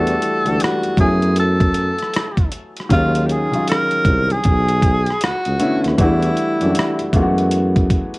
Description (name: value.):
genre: R&B, neo-soul.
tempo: 78 BPM.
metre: 4/4.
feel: swing 62% on 16ths.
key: unclear.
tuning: A4 = 438 Hz.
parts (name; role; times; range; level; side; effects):
breathy tenor saxophone; melody; 0.0-7.5 s; E4 to Bb4; -20 LUFS; equal; cassette tape.
warm upright piano; accompaniment; 0.0-8.2 s; D3 to Ab5; -20 LUFS; left 1 dB; cassette tape.
breathy tuba; bass; 0.0-8.1 s; B1 to F#2; -19 LUFS; equal; none.
dusty soul sampler-style drum kit; drums; 0.1-8.2 s; hi-hat, kick drum, rim click; -19 LUFS; equal; overdrive.
room: light reverb.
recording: home recording on cassette.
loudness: -14 LUFS.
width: side -24 dB against mid.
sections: 0.0-2.9 A section; 2.9-8.2 A section.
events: none.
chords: 0.0 Em11; 1.0 Gbm11; 2.9 Ebm11; 4.4 Bm11; 6.0 Em11; 7.1 Gbm11.